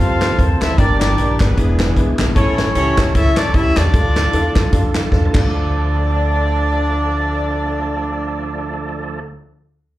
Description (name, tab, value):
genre	uptempo gospel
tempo	152 BPM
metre	4/4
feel	swing 57% on 8ths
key	D minor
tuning	A4 = 440 Hz
part	mellow horn section	melody	0.0-9.2 s	B3 to F5	-20 LUFS	equal	slapback echo
part	warm concert grand piano	accompaniment	0.0-9.2 s	D2 to D5	-24 LUFS	equal	slapback echo
part	tonewheel organ	sustained chords	0.0-9.2 s	E3 to A5	-29 LUFS	right 5 dB	slow rotary speaker, overdrive, chorus vibrato
part	upright bass	bass	0.0-9.2 s	E1 to F2	-19 LUFS	equal	none
part	swinging big-band drum kit	drums	0.2-5.4 s	crash cymbal, hi-hat, kick drum, snare drum, toms	-17 LUFS	equal	none
part	group handclap	percussion	0.2-5.7 s	none	-30 LUFS	right 2 dB	slapback echo
room	little or no reverb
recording	live gig heard through the venue's PA, club reverb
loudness	-14 LUFS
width	side -15 dB against mid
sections	0.0-5.5 A section; 5.5-8.7 B section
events	tonewheel organ fill 4.9-5.5; drum fill 5.1-5.5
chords	0.0 F; 0.8 Gm; 1.6 E7; 2.4 A; 3.9 Dm